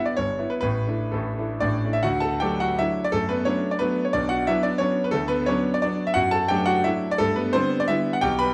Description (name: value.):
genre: classical, romantic triple-time dance for piano with dotted rhythms.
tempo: 117-188 BPM.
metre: 3/4.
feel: rubato.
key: D major.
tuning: A4 = 441 Hz.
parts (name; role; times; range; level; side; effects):
clear grand piano; solo; 0.0-8.5 s; G1 to B5; -23 LUFS; equal; none.
room: wet recital hall reverb, RT60 1.4 s.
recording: none.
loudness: -23 LUFS.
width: mono.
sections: 0.0-2.0 A section; 2.0-8.5 B section.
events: none.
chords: 0.0 Em/G; 0.6 Asus4; 1.6 A; 2.0 D; 3.1 D/F#; 4.1 Bm; 5.1 Bm/D; 6.2 D/F#; 7.2 G.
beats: 0.17 | 0.62 1.12 1.60 | 2.04 2.41 2.78 | 3.12 3.46 3.80 | 4.13 4.47 4.81 | 5.13 5.48 5.84 | 6.16 6.50 6.86 | 7.20 7.54 7.89 | 8.22.